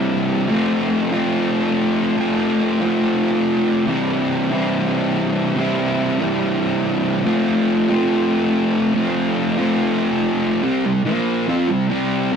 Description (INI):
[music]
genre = rock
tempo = 142 BPM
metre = 4/4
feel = straight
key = unclear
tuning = A4 = 439 Hz
[part]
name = thick fuzz guitar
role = solo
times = 0.0-12.4 s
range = Bb2 to F4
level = -16 LUFS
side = equal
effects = distortion
[sound]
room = moderate small room ambience, RT60 0.5 s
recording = rough rehearsal-room recording, warm saturation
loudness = -16 LUFS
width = side -7 dB against mid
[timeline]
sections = 0.0-10.6 A section; 10.6-12.4 B section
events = none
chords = 0.5 F; 3.9 C; 7.3 F; 10.6 C5; 11.1 Bb5; 11.5 C5